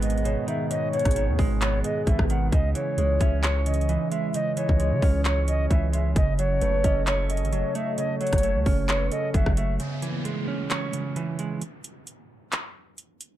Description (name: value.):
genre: hip hop, trap.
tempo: 132 BPM.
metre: 4/4.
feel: half-time.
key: C# minor.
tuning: A4 = 442 Hz.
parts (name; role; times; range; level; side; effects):
concert flute; melody; 0.0-9.7 s; C#5 to F#5; -29 LUFS; equal; low-pass filter, tape echo.
direct-recorded clean electric guitar; accompaniment; 0.0-11.6 s; G#2 to C#5; -29 LUFS; right 4 dB; low-pass filter.
dark analog pad; sustained chords; 0.0-9.8 s; D#3 to A4; -34 LUFS; right 1 dB; chorus.
long sustained 808-style bass; bass; 0.0-9.8 s; F#1 to C#3; -25 LUFS; equal; none.
trap drum kit; drums; 0.0-13.3 s; handclaps, hi-hat, kick drum, rim click; -25 LUFS; equal; overdrive.
soft octave-layered synth lead; second line; 0.2-9.3 s; G#4 to E5; -33 LUFS; left 3 dB; chorus, phaser, tape echo.
downlifter; sound effects; 9.8-13.4 s; none; -36 LUFS; equal; none.
room: digital ambience.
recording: dark, warm production.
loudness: -22 LUFS.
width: side -13 dB against mid.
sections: 0.0-9.8 A section; 9.8-13.4 B section.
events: break 9.8-13.4.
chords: 0.0 G#m; 2.5 C#m; 6.2 F#m; 9.8 C#m.